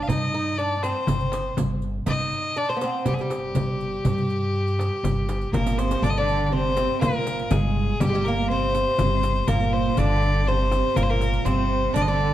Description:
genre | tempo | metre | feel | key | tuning
Arabic maqam ensemble | 121 BPM | 4/4 | straight | G maqam kurd from 6.0 s | A4 = 439 Hz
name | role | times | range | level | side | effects
clear violin | melody | 0.0-12.3 s | G4 to F5 | -26 LUFS | left 3 dB | none
oud | second line | 0.0-12.3 s | G3 to Eb4 | -29 LUFS | right 3 dB | none
upright bass | bass | 0.1-12.3 s | G1 to G2 | -26 LUFS | equal | none
darbuka | percussion | 0.1-6.0 s | none | -30 LUFS | right 2 dB | none
frame drum | percussion | 0.1-12.1 s | none | -29 LUFS | left 2 dB | none
riq | percussion | 0.1-12.1 s | none | -36 LUFS | right 7 dB | none
clear chamber cello section | second line | 5.5-12.3 s | G2 to D3 | -28 LUFS | right 3 dB | none
room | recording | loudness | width
moderate recital hall reverb, RT60 1.4 s | dark, warm production | -21 LUFS | side -12 dB against mid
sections
0.0-6.0 A section; 6.0-12.3 B section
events
drum fill 5.5-6.0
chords
none

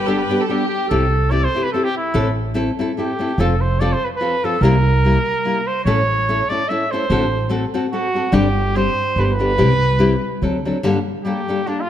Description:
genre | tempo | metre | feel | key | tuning
mexican folk, mariachi | 145 BPM | 3/4 | swing 55% on 8ths | C major | A4 = 440 Hz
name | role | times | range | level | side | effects
clear trumpet | melody | 0.0-11.9 s | D4 to E5 | -21 LUFS | right 1 dB | none
warm chamber violin section | second line | 0.0-0.9 s | G4 to B4 | -25 LUFS | right 2 dB | none
upright bass | bass | 0.0-10.7 s | F1 to D2 | -19 LUFS | right 1 dB | none
nylon-string guitar | accompaniment | 0.1-11.8 s | G2 to Bb4 | -20 LUFS | left 2 dB | none
room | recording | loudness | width
moderate concert hall reverb, RT60 2.1 s | dark, warm production | -16 LUFS | side -10 dB against mid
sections
0.9-10.8 A section; 10.8-11.9 B section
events
none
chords
0.0 G; 0.9 C6; 2.2 Am; 3.4 F; 4.6 C7; 5.9 A; 7.1 D7/A (rootless); 8.3 Gsus4; 9.2 Gadd9; 9.6 C; 10.4 D7; 10.8 Gmadd9

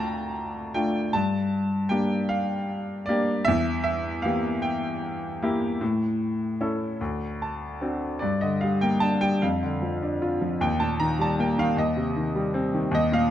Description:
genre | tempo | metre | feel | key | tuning
classical, lyrical solo piano | 51 BPM (dotted quarters) | 6/8 | rubato | D minor, G minor from 8.2 s | A4 = 441 Hz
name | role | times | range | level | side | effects
clear grand piano | solo | 0.0-13.3 s | D2 to Bb5 | -23 LUFS | equal | none
room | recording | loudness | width
moderate concert hall reverb, RT60 1.8 s | none | -23 LUFS | side -11 dB against mid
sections
0.0-8.2 A section; 8.2-13.3 B section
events
grand piano fill 7.0-8.2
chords
0.0 Dm; 1.1 Gm; 3.5 Edim; 5.8 A; 7.0 D7; 8.2 Gm; 9.4 Dm/F; 10.6 Eb; 11.8 Cm/Eb

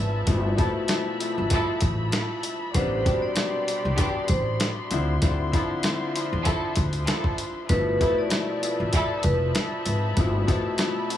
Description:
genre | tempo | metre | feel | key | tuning
hip hop, boom-bap hip-hop | 97 BPM | 4/4 | swing 57% on 16ths | unclear | A4 = 436 Hz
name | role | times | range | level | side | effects
warm studio string section | sustained chords | 0.0-11.2 s | F3 to C6 | -33 LUFS | left 1 dB | high-pass filter, low-pass filter
upright bass | bass | 0.0-10.4 s | F1 to E2 | -27 LUFS | equal | none
warm upright piano | accompaniment | 0.3-11.2 s | B2 to E4 | -29 LUFS | left 4 dB | cassette tape, high-pass filter, low-pass filter, dub echo
dusty soul sampler-style drum kit | drums | 0.3-11.2 s | hi-hat, kick drum, snare drum | -26 LUFS | equal | dub echo
warm symphonic string section | stabs | 0.6-10.6 s | E3 to A4 | -33 LUFS | right 1 dB | high-pass filter, low-pass filter, dub echo
vibraphone with medium hard mallets | melody | 2.8-9.5 s | B4 to D5 | -30 LUFS | right 1 dB | high-pass filter, low-pass filter, dub echo
room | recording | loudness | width
light reverb, small room ambience | echo-heavy mix | -22 LUFS | side -11 dB against mid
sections
0.0-11.2 A section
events
none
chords
0.0 G13; 2.7 Am11; 4.9 Dm9; 7.7 G13

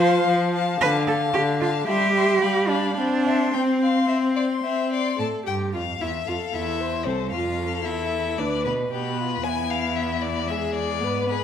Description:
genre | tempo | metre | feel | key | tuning
quick classical-period movement for string quartet | 113 BPM | 4/4 | rubato | C major, A minor from 5.2 s | A4 = 440 Hz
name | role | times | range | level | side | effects
rich violin | melody | 0.0-11.4 s | B4 to C6 | -29 LUFS | left 10 dB | none
rich violin | second line | 0.0-11.4 s | E4 to G5 | -28 LUFS | left 4 dB | none
clear viola | accompaniment | 0.0-11.3 s | D3 to A4 | -25 LUFS | left 1 dB | none
clear cello | bass | 0.0-11.4 s | C2 to C5 | -26 LUFS | right 3 dB | none
room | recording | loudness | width
wet recital hall reverb, RT60 1.3 s | none | -21 LUFS | side -9 dB against mid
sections
0.0-5.2 A section; 5.2-11.4 B section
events
none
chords
0.0 F; 0.8 Dm; 1.9 C/G; 2.4 G7; 3.0 C; 5.2 Am; 7.3 Bdim; 9.5 E7

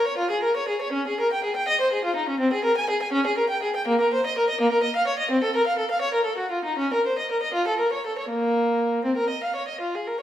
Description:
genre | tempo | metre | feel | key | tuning
classical, baroque-style suite movement for unaccompanied violin | 76-86 BPM (dotted quarters) | 6/8 | rubato | unclear | A4 = 441 Hz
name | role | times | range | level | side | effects
rich violin | solo | 0.0-10.2 s | Bb3 to Ab5 | -21 LUFS | equal | none
room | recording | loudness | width
wet stone room reverb, RT60 1.2 s | heard from further back in the room | -21 LUFS | side -11 dB against mid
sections
0.0-9.8 A section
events
none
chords
none

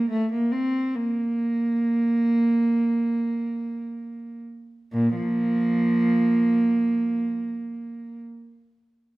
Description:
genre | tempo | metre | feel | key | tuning
classical, baroque-style suite movement for unaccompanied cello | free time | none | none | unclear | A4 = 441 Hz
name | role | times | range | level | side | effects
dark cello | solo | 0.0-8.2 s | Bb2 to C4 | -22 LUFS | right 1 dB | none
room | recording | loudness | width
wet recital hall reverb, RT60 1.3 s | none | -21 LUFS | side -19 dB against mid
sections
0.0-4.9 A section; 4.9-9.2 B section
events
slowing down 0.0-4.9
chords
none

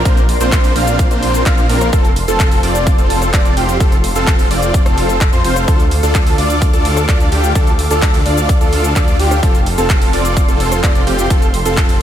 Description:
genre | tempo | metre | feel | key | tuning
EDM, festival progressive house | 128 BPM | 4/4 | straight | F major | A4 = 440 Hz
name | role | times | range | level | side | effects
lush unison pad | sustained chords | 0.0-12.0 s | A4 to D6 | -23 LUFS | equal | chorus, phaser, sidechain pumping
wide unison lead | arpeggios | 0.0-12.0 s | G4 to F5 | -20 LUFS | equal | analog chorus, sidechain pumping, diffuse ambient delay
supersaw chords | riff | 0.0-12.0 s | Bb3 to F5 | -19 LUFS | right 1 dB | sidechain pumping, diffuse ambient delay
detuned saw bass | bass | 0.0-12.0 s | F1 to F2 | -18 LUFS | equal | tube saturation, sidechain pumping
downlifter | sound effects | 0.1-1.9 s | none | -36 LUFS | equal | none
big-room dance drum kit | drums | 0.1-12.0 s | handclaps, hi-hat, rim click, shaker | -22 LUFS | left 1 dB | overdrive
electronic kick drum | drums | 0.1-11.9 s | none | -13 LUFS | equal | overdrive
room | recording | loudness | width
light reverb | none | -11 LUFS | side -10 dB against mid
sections
0.0-12.0 A section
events
none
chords
0.0 Bbadd9; 1.9 F; 5.7 Dm; 9.4 F

